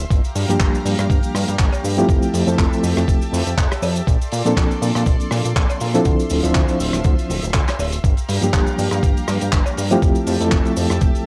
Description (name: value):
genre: nu-disco, nu disco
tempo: 121 BPM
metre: 4/4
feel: swing 55% on 16ths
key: G dorian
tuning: A4 = 444 Hz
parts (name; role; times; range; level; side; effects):
- lush unison pad; sustained chords; 0.0-11.3 s; F3 to C6; -33 LUFS; equal; chorus, sidechain pumping, cassette tape
- fat analog bass; bass; 0.0-11.1 s; D1 to Bb2; -24 LUFS; equal; none
- cloth-damped thuddy drum kit; drums; 0.0-11.2 s; cabasa, handclaps, hi-hat, rim click; -28 LUFS; equal; cassette tape
- electronic kick drum; drums; 0.1-11.1 s; none; -20 LUFS; equal; cassette tape
- reed electric piano; accompaniment; 0.5-11.3 s; F3 to C5; -23 LUFS; equal; fast tremolo, cassette tape, tape echo
- cowbell; percussion; 1.7-9.8 s; none; -30 LUFS; equal; none
room: little or no reverb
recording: home recording on cassette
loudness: -18 LUFS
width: mono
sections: 0.0-11.3 A section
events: none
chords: 0.1 Gm7; 2.1 Fmaj9; 4.1 Bbmaj9; 6.1 Dm9; 8.0 Gm7; 10.0 Fmaj9